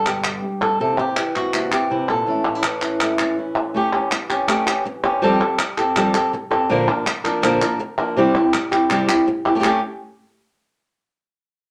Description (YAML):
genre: flamenco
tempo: 163 BPM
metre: 4/4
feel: straight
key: unclear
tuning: A4 = 440 Hz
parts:
  - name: flamenco guitar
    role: melody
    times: 0.0-9.8 s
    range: G2 to Bb4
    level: -21 LUFS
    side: equal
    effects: none
  - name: flamenco guitar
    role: stabs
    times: 0.0-3.8 s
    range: G2 to G4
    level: -31 LUFS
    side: equal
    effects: none
  - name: palmas hand claps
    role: percussion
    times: 0.1-9.7 s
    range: none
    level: -25 LUFS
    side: equal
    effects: none
room: wet club reverb, RT60 0.7 s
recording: none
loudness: -20 LUFS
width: mono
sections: 0.0-3.8 A section; 3.8-9.6 B section; 9.6-11.1 C section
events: none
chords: 0.0 G; 0.8 C7; 2.3 A; 3.8 A7; 5.2 Fadd9; 6.7 Bb; 8.2 C; 9.6 N.C.